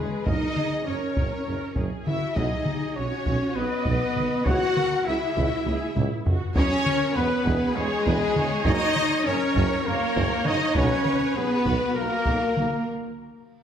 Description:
cinematic, epic orchestral film score; 200 BPM (eighths); 7/8; straight; F# mixolydian; A4 = 439 Hz
warm symphonic violin section; melody; 0.0-12.9 s; G#4 to F#5; -34 LUFS; left 5 dB
warm symphonic violin section; second line; 0.0-12.8 s; G#4 to F#5; -34 LUFS; left 2 dB
warm symphonic viola section; accompaniment; 0.0-12.9 s; E4 to D#5; -33 LUFS; right 2 dB
mellow French horn section; sustained chords; 0.0-12.8 s; G#3 to F#4; -28 LUFS; left 2 dB
clear trumpet section; stabs; 0.0-12.8 s; G#4 to F#5; -31 LUFS; right 1 dB
warm symphonic cello section; bass; 0.0-12.9 s; G#3 to F#4; -31 LUFS; right 2 dB
warm symphonic double bass section; bass; 0.0-12.6 s; B1 to F#2; -31 LUFS; right 3 dB
warm tuba; bass; 0.0-12.7 s; E1 to C#2; -34 LUFS; right 3 dB
impact and reverse cymbal; sound effects; 0.0-0.3, 13.3-13.6 s; -69 LUFS; equal
warm trombone section; sustained chords; 0.2-11.0 s; E3 to B3; -37 LUFS; right 1 dB
taiko ensemble; drums; 0.3-12.8 s; -28 LUFS; equal
wet scoring stage reverb, RT60 1.8 s; -22 LUFS; side -8 dB against mid
0.0-13.6 A section
impact 0.0; drum fill 5.7-6.6; break 12.9-13.6; reverse cymbal 13.3
0.3 F#; 2.4 Bsus2; 4.5 C#m; 6.6 E; 8.7 F#; 10.8 Bsus2; 12.9 N.C.
| 0.28 0.58 0.88 1.18 1.48 1.77 2.07 | 2.37 2.67 2.97 3.27 3.57 3.87 4.17 | 4.47 4.77 5.07 5.37 5.67 5.97 6.27 | 6.57 6.87 7.17 7.46 7.76 8.06 8.36 | 8.66 8.96 9.26 9.56 9.86 10.16 10.46 | 10.76 11.06 11.36 11.66 11.96 12.27 12.57 | 12.87 13.17 13.47

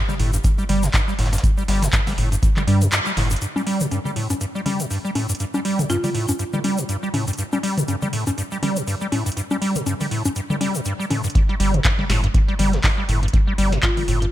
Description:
acid house; 121 BPM; 4/4; swing 57% on 16ths; G minor; A4 = 439 Hz
acid bass, square; riff; 0.0-14.3 s; G2 to G3; -23 LUFS; equal; overdrive, analog chorus, cassette tape, sidechain pumping, digital delay
booming analog drum machine; drums; 0.1-14.3 s; congas, handclaps, hi-hat, snare drum, toms; -25 LUFS; left 1 dB
dusty soul sampler-style drum kit; drums; 0.1-3.4, 11.4-14.3 s; hi-hat, snare drum; -35 LUFS; right 1 dB
egg shaker; percussion; 0.1-11.3 s; -32 LUFS; left 3 dB
round analog bass; bass; 0.2-3.4, 11.6-14.3 s; G1 to G2; -20 LUFS; equal; sidechain pumping
electronic kick drum; drums; 0.4-2.5, 11.4-13.9 s; -19 LUFS; equal
buzzing marimba with hard mallets; melody; 5.9-6.6, 13.8-14.3 s; F4; -27 LUFS; equal; digital delay
light reverb; -18 LUFS; side -13 dB against mid
0.0-3.4 A section; 3.4-11.4 B section; 11.4-14.3 C section
break 2.9-3.4; band accent 2.9; drop 11.4-14.3
0.44 0.94 | 1.43 1.93 2.43 2.92 | 3.42 3.91 4.41 4.91 | 5.40 5.90 6.39 6.89 | 7.38 7.88 8.38 8.87 | 9.37 9.86 10.36 10.86 | 11.35 11.85 12.34 12.84 | 13.34 13.83

